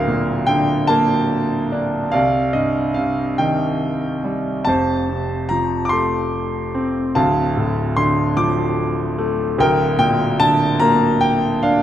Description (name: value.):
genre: classical, lyrical solo piano.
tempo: 49 BPM (dotted quarters).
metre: 6/8.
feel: rubato.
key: unclear.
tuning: A4 = 440 Hz.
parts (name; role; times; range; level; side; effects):
clear concert grand piano; solo; 0.0-11.8 s; D1 to D6; -16 LUFS; equal; none.
room: moderate recital hall reverb, RT60 1.3 s.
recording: minimal, uncompressed stereo recording.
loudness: -16 LUFS.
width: side -11 dB against mid.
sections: 0.0-11.8 A section.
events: none.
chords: 0.0 Gm9/D; 2.1 Cmadd9; 4.7 F; 7.2 Dm; 9.6 Gmadd9/D.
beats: 0.90 | 2.13 3.40 | 4.67 5.92 | 7.15 8.37 | 9.59 10.81.